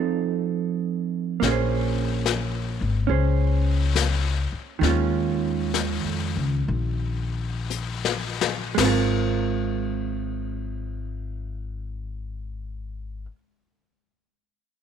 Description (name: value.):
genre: jazz ballad.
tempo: 54-72 BPM.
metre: 4/4.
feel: swing 68% on 8ths.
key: Ab major.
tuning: A4 = 440 Hz.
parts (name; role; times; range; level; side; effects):
vintage hollow-body jazz guitar; accompaniment; 0.0-13.4 s; Eb3 to C5; -26 LUFS; right 10 dB; none.
upright bass; bass; 1.4-13.2 s; Ab1 to F2; -26 LUFS; left 3 dB; none.
jazz brush drum kit; drums; 1.4-9.7 s; brushed snare drum, crash cymbal, hi-hat, snare drum; -28 LUFS; left 10 dB; none.
room: light reverb, studio reverb.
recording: 1960s-style stereo with parts hard left and right.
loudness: -22 LUFS.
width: side -8 dB against mid.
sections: 0.0-1.4 A section; 1.4-8.8 B section; 8.8-13.2 C section.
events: break 0.0-1.4; slowing down 1.4-8.8; drum fill 7.7-8.8.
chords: 0.0 F7; 1.4 Bbm9; 4.8 Eb9sus4; 8.8 Ab69.